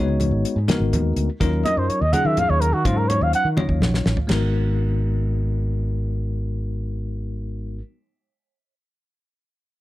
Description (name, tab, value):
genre	electric jazz fusion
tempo	83 BPM (dotted quarters)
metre	6/8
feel	straight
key	G# dorian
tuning	A4 = 441 Hz
part	bell-like tine electric piano	accompaniment	0.0-7.8 s	F#3 to C#5	-26 LUFS	left 3 dB	medium stereo tremolo
part	fretless electric bass	bass	0.0-7.8 s	G#1 to D#3	-22 LUFS	equal	none
part	congas	percussion	0.1-4.5 s	none	-28 LUFS	right 2 dB	none
part	damped 70s drum kit	drums	0.2-4.4 s	crash cymbal, hi-hat, kick drum, snare drum, toms	-25 LUFS	equal	none
part	mellow trumpet	melody	1.6-3.5 s	E#4 to F#5	-22 LUFS	right 1 dB	none
room	light reverb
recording	dark, warm production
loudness	-19 LUFS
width	side -16 dB against mid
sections	0.0-4.3 A section; 4.3-7.2 B section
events	trumpet solo 0.0-4.3; drum fill 3.6-4.3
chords	0.0 G#m9; 1.4 D#m9; 4.3 G#m9